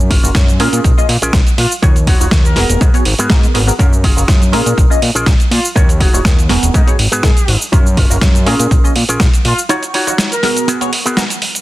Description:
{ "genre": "filtered disco house", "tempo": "122 BPM", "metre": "4/4", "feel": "swing 53% on 16ths", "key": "Eb minor", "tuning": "A4 = 444 Hz", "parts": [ { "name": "fat analog bass", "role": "bass", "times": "0.0-9.5 s", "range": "Eb1 to Bb2", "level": "-16 LUFS", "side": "equal", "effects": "sidechain pumping" }, { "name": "dusty soul sampler-style drum kit", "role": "drums", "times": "0.0-11.6 s", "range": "hi-hat, shaker, snare drum", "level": "-17 LUFS", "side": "right 1 dB", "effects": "sidechain pumping on perc, sidechain pumping on hats" }, { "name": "electric guitar with an envelope filter", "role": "riff", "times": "0.1-11.3 s", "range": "Cb4 to Db5", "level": "-20 LUFS", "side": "equal", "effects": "sidechain pumping" }, { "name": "electronic kick drum", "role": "drums", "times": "0.1-9.3 s", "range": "none", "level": "-11 LUFS", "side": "equal", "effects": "none" }, { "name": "funky polysynth comp", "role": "accompaniment", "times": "0.2-11.2 s", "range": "Cb4 to Eb5", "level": "-20 LUFS", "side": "right 1 dB", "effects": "chorus, phaser, sidechain pumping" }, { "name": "clear horn section", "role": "melody", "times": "1.6-10.7 s", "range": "Eb4 to Bb4", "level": "-22 LUFS", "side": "equal", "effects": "sidechain pumping, dub echo" } ], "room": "little or no reverb", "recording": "dense, heavily limited modern master", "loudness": "-9 LUFS", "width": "side -16 dB against mid", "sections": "0.0-11.6 A section", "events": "break 9.7-11.6", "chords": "0.0 Gbmaj7; 0.6 Bbm7; 1.8 Ebm9; 2.8 Abm9; 3.8 Gbmaj7; 4.5 Bbm7; 5.8 Ebm9; 6.7 Abm9; 7.7 Gbmaj7; 8.5 Bbm7; 9.7 Ebm9; 10.7 Abm9", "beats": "0.35 0.84 1.34 | 1.83 2.32 2.81 3.30 | 3.79 4.29 4.78 5.27 | 5.76 6.25 6.75 7.24 | 7.73 8.22 8.71 9.21 | 9.70 10.19 10.68 11.17" }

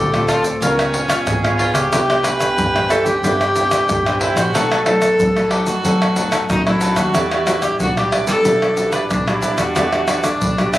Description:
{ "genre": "samba and choro", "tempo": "92 BPM", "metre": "4/4", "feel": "straight", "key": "E minor", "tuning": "A4 = 441 Hz", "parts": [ { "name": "clear viola", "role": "melody", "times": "0.0-10.8 s", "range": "C#4 to B4", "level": "-19 LUFS", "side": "equal", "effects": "none" }, { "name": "wooden flute", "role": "second line", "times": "0.0-10.8 s", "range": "D4 to A#4", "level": "-24 LUFS", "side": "right 1 dB", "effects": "none" }, { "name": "cavaquinho", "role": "accompaniment", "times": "0.0-10.8 s", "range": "D#4 to G5", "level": "-24 LUFS", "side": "right 2 dB", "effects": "none" }, { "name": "nylon-string guitar", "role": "accompaniment", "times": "0.0-10.8 s", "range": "F#2 to F#4", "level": "-25 LUFS", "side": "left 2 dB", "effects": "none" }, { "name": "vintage muted fingered electric bass", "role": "bass", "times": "0.0-10.8 s", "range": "G#1 to G2", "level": "-24 LUFS", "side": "equal", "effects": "none" }, { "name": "tube shaker, pandeiro, tamborim and surdo", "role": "percussion", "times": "0.1-10.8 s", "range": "none", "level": "-19 LUFS", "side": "equal", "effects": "none" } ], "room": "light reverb", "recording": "recorded on a phone in the room, studio ambience", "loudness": "-14 LUFS", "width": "side -15 dB against mid", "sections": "0.0-10.8 A section", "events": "none", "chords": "0.0 Dm7; 0.6 C#7#11; 1.9 Cmaj9; 4.5 B7; 7.1 Em9", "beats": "0.61 1.27 | 1.92 2.57 3.23 3.88 | 4.54 5.19 5.84 6.50 | 7.15 7.80 8.46 9.11 | 9.76 10.41" }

